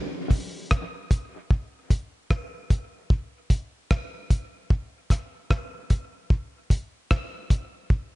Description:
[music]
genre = reggae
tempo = 75 BPM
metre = 4/4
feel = swing 58% on 16ths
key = none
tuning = none
[part]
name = cloth-damped thuddy drum kit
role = drums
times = 0.3-8.1 s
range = hi-hat, kick drum, rim click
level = -22 LUFS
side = equal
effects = none
[sound]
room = little or no reverb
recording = nothing above 10.5 kHz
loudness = -25 LUFS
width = side -21 dB against mid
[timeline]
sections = 0.0-8.2 A section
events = none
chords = none

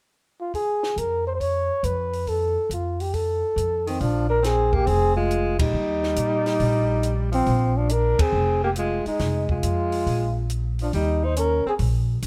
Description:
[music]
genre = jazz, small-group swing and bop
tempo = 139 BPM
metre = 4/4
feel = swing 67% on 8ths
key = Bb mixolydian from 4.0 s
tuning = A4 = 440 Hz
[part]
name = dark flugelhorn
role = melody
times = 0.4-11.7 s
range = C4 to Db5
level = -26 LUFS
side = equal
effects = none
[part]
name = compact cocktail drum kit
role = drums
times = 0.5-12.3 s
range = hi-hat, kick drum, ride cymbal, snare drum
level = -32 LUFS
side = equal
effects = none
[part]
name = upright bass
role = bass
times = 1.0-12.3 s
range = F1 to Bb2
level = -27 LUFS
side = equal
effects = none
[part]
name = clear alto saxophone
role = second line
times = 3.9-11.7 s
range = Eb3 to Eb4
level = -31 LUFS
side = equal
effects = none
[sound]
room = light reverb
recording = none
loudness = -23 LUFS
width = mono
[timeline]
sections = 0.5-4.0 A section; 4.0-12.3 B section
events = band accent 5.5, 8.1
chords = 0.0 N.C.; 0.5 F; 4.0 Bb5; 5.7 Eb; 7.5 Bbsus2; 9.2 Fm; 10.1 Bb5; 10.9 Eb5

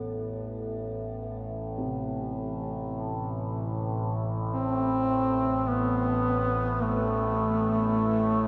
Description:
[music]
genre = dark ambient drone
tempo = free time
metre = none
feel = none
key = A minor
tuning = A4 = 440 Hz
[part]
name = dark grand piano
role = arpeggios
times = 0.0-8.5 s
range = E2 to B3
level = -42 LUFS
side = equal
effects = tape echo
[part]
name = overtone-sweeping drone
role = drone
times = 0.0-8.5 s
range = A1 to A2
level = -33 LUFS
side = equal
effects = chorus, built-in reverb
[part]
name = bronze singing bowl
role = texture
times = 0.0-8.5 s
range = A4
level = -46 LUFS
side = equal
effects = shimmer reverb
[part]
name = mellow duduk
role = melody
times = 4.5-8.5 s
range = A3 to C4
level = -28 LUFS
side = equal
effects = tape echo
[sound]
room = wet huge ambient reverb, RT60 7.3 s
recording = cassette tape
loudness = -29 LUFS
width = mono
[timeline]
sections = 0.0-8.5 A section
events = fade-in on synth drone 0.0-8.5; fade-in on grand piano 0.0-8.5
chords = 0.0 A5

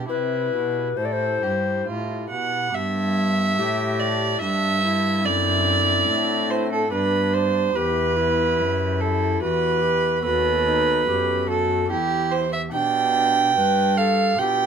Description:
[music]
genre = classical, baroque-style sonata movement with continuo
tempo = 72 BPM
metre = 3/4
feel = straight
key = G major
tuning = A4 = 437 Hz
[part]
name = rich violin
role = second line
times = 0.0-14.7 s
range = E4 to G5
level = -21 LUFS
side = right 4 dB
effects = none
[part]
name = pipe organ, stopped flute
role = accompaniment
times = 0.0-14.7 s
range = D#2 to A4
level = -30 LUFS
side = left 1 dB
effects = none
[part]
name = warm cello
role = bass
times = 0.0-14.7 s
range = D#2 to C3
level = -26 LUFS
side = equal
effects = none
[part]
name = tenor recorder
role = melody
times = 0.1-14.7 s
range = D4 to D5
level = -26 LUFS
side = left 7 dB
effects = none
[sound]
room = light reverb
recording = minimal, uncompressed stereo recording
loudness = -19 LUFS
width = side -7 dB against mid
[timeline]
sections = 0.0-2.7 A section; 2.7-14.7 A section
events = none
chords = 0.1 C; 2.7 G; 5.3 D7/F#; 6.9 G; 7.7 Em; 10.2 B7/D#; 11.9 Em; 12.7 G/B

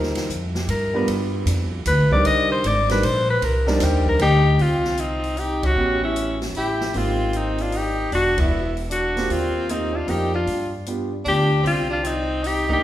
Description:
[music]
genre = jazz, small-group swing and bop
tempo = 153 BPM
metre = 3/4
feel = swing 65% on 8ths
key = C minor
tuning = A4 = 441 Hz
[part]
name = warm concert grand piano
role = accompaniment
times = 0.0-12.8 s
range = G3 to B4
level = -26 LUFS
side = right 2 dB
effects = none
[part]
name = upright bass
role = bass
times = 0.0-12.8 s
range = E1 to G2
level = -24 LUFS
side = equal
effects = none
[part]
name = open jazz drum kit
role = drums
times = 0.0-12.8 s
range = hi-hat, kick drum, ride cymbal, snare drum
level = -29 LUFS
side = equal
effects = none
[part]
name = breathy alto saxophone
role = melody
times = 0.6-12.8 s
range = D4 to Eb5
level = -22 LUFS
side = left 2 dB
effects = none
[part]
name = clear tenor saxophone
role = second line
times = 4.2-12.8 s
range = B3 to E4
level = -28 LUFS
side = right 1 dB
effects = none
[sound]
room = wet recital hall reverb, RT60 1.3 s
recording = recorded in a church or concert hall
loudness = -18 LUFS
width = side -13 dB against mid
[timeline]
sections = 0.0-4.6 A section; 4.6-12.8 B section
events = alto saxophone solo 0.0-4.6; band accent 5.6, 8.3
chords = 0.0 Eb69; 1.1 G7; 2.2 Cm7; 4.6 Cm; 5.8 A13; 6.9 Abmaj9; 8.1 E5; 9.3 Eb69; 10.5 G7; 11.7 Cm

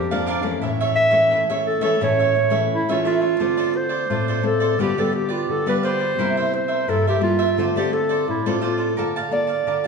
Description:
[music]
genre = samba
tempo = 86 BPM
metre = 4/4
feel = straight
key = D minor from 3.4 s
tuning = A4 = 439 Hz
[part]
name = warm clarinet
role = melody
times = 0.0-9.9 s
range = E4 to E5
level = -20 LUFS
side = right 2 dB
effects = none
[part]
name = cavaquinho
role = accompaniment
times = 0.0-9.9 s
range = D4 to A5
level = -26 LUFS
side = right 4 dB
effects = none
[part]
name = nylon-string guitar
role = accompaniment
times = 0.0-9.9 s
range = F2 to A4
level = -24 LUFS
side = left 4 dB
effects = none
[sound]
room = wet recital hall reverb, RT60 1.4 s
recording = recorded in a church or concert hall, nothing above 10.5 kHz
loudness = -18 LUFS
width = side -5 dB against mid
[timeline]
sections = 0.0-3.4 A section; 3.4-9.9 B section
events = none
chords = 0.0 Bb; 0.6 A; 3.4 Dm7; 4.8 G7/D; 6.2 C7; 7.6 Dm7; 9.0 Bbmaj7/D

